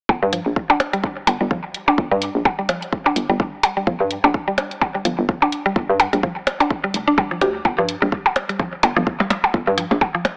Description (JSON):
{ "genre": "minimal techno", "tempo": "127 BPM", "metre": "4/4", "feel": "swing 57% on 16ths", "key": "G minor", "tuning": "A4 = 440 Hz", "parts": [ { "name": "hollow knocking FM bass", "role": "bass", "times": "0.1-10.0 s", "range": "F1 to G2", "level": "-23 LUFS", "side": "equal", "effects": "sidechain pumping" }, { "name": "electronic kick drum", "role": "drums", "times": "0.1-10.1 s", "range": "none", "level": "-25 LUFS", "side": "equal", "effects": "studio reverb" }, { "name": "percussion blips", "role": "percussion", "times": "0.1-10.4 s", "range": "none", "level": "-22 LUFS", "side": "equal", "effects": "studio reverb, tape echo" }, { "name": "mallet-like synth pluck", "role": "riff", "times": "0.2-10.2 s", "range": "F3 to G4", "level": "-25 LUFS", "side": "equal", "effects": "chorus, sidechain pumping, tape echo" }, { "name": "electronic hi-hat", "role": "drums", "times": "0.3-10.4 s", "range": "none", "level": "-28 LUFS", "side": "equal", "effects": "studio reverb" } ], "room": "light reverb, digital ambience", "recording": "AM radio sound", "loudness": "-20 LUFS", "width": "mono", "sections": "0.1-10.4 A section", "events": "none", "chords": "none" }